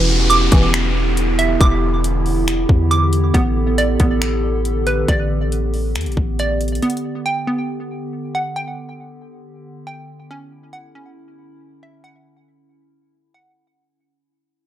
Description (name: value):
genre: hip hop, atmospheric cloud-rap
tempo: 138 BPM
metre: 4/4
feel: half-time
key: unclear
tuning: A4 = 442 Hz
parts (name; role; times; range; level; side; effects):
- warbly tape-like pad; sustained chords; 0.0-13.7 s; D3 to A4; -23 LUFS; right 2 dB; chorus, built-in reverb, sidechain pumping
- hollow square pluck; arpeggios; 0.0-13.8 s; E3 to D6; -21 LUFS; right 2 dB; chorus, analog delay
- long sustained 808-style bass; bass; 0.0-6.8 s; E1 to E2; -19 LUFS; equal; none
- downlifter; sound effects; 0.0-3.3 s; none; -24 LUFS; equal; none
- trap drum kit; drums; 0.3-7.0 s; finger snaps, hi-hat, kick drum; -18 LUFS; equal; none
room: digital ambience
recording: dry, gritty hardware recording, transformer saturation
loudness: -15 LUFS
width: side -11 dB against mid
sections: 0.0-13.8 A section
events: fade-out 0.0-13.8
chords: 0.0 Em7; 3.3 A9sus4; 6.8 Gmaj7; 10.3 Dmaj9